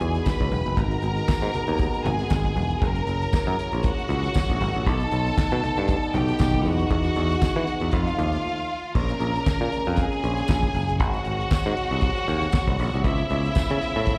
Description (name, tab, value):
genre	disco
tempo	117 BPM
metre	4/4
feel	swing 56% on 16ths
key	G# minor, Bb minor from 9.0 s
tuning	A4 = 440 Hz
part	bright studio string section	second line	0.0-14.2 s	E4 to B5	-30 LUFS	equal	slapback echo
part	mellow French horn section	sustained chords	0.0-14.2 s	Db3 to A#4	-33 LUFS	equal	none
part	picked electric bass	bass	0.0-14.1 s	E1 to E3	-27 LUFS	equal	none
part	damped 70s drum kit	drums	0.0-14.2 s	crash cymbal, handclaps, hi-hat, kick drum, snare drum	-26 LUFS	equal	none
part	congas	percussion	0.0-8.3 s	none	-37 LUFS	equal	none
part	tambourine	percussion	0.3-13.7 s	none	-45 LUFS	equal	none
room	light reverb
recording	live gig heard through the venue's PA, recital hall reverb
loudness	-24 LUFS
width	mono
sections	0.0-9.0 A section; 9.0-14.2 A section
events	break 8.4-9.0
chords	0.0 Emaj7; 0.8 G#m9; 2.8 F#7; 4.9 Baug7; 6.7 Emaj7; 7.9 F7; 9.0 Bbm7; 11.0 Ab7; 13.0 Db7alt